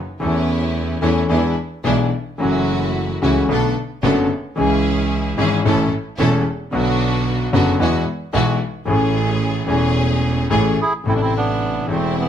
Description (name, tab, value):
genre	tango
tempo	111 BPM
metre	4/4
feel	rubato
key	A major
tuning	A4 = 439 Hz
part	clear concert grand piano	accompaniment	0.2-12.3 s	E1 to A4	-18 LUFS	left 3 dB	none
part	clear symphonic string section	stabs	0.2-12.3 s	G#3 to A4	-24 LUFS	right 2 dB	none
part	rich double bass	bass	0.2-12.3 s	E1 to E2	-22 LUFS	right 3 dB	none
part	bandoneon	melody	10.8-12.3 s	E3 to G#4	-21 LUFS	right 4 dB	none
room	moderate large studio reverb, RT60 1.0 s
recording	none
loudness	-16 LUFS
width	side -9 dB against mid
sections	0.0-11.1 A section; 11.1-12.3 B section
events	none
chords	0.2 A/E; 1.3 E7; 2.4 F#m7; 3.5 Bm7; 4.6 C#m; 5.7 A; 6.7 Bm; 7.8 Eadd9; 8.9 Amaj7; 11.1 Am